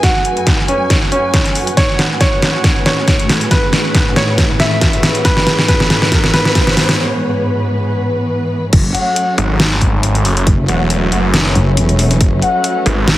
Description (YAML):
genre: heavy wobble dubstep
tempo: 138 BPM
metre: 4/4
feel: swing 54% on 16ths, half-time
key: F# minor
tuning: A4 = 437 Hz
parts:
  - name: bright concert grand piano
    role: melody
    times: 0.0-6.9 s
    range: C#4 to E5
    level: -19 LUFS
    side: right 1 dB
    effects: low-pass filter, digital delay
  - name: dark symphonic string section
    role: sustained chords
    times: 0.0-13.2 s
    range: F#2 to G#5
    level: -20 LUFS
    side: equal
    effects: vintage 12-bit sampler grit, sidechain pumping
  - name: dubstep drum kit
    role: drums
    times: 0.0-13.2 s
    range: crash cymbal, hi-hat, snare drum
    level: -15 LUFS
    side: equal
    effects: none
  - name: electronic kick drum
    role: drums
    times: 0.0-12.3 s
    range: none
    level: -15 LUFS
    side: equal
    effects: none
  - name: granular cloud pad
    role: texture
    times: 0.0-13.2 s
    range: A3 to B5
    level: -24 LUFS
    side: equal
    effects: built-in reverb, sidechain pumping
  - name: riser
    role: sound effects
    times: 4.1-7.0 s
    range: none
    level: -25 LUFS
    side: right 1 dB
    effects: none
  - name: wobble bass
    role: bass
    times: 8.7-12.4 s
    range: E1 to F#1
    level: -13 LUFS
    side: equal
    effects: chorus, overdrive
  - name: warm brass ensemble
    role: stabs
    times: 8.9-12.8 s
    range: F#4 to F#5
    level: -18 LUFS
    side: left 3 dB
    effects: none
  - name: snarling distorted saw bass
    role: bass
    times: 9.4-13.2 s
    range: E1 to G#1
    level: -14 LUFS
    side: equal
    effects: distortion, overdrive
room: light reverb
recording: heavily compressed radio sound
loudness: -11 LUFS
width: side -15 dB against mid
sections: 0.0-8.7 A section; 8.7-13.2 B section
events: build-up 0.0-8.7; drum fill 0.0-7.0; break 7.0-8.7; drop 8.7-13.2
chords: 0.0 F#madd9; 1.8 Aadd9; 5.3 E/G#; 8.7 F#m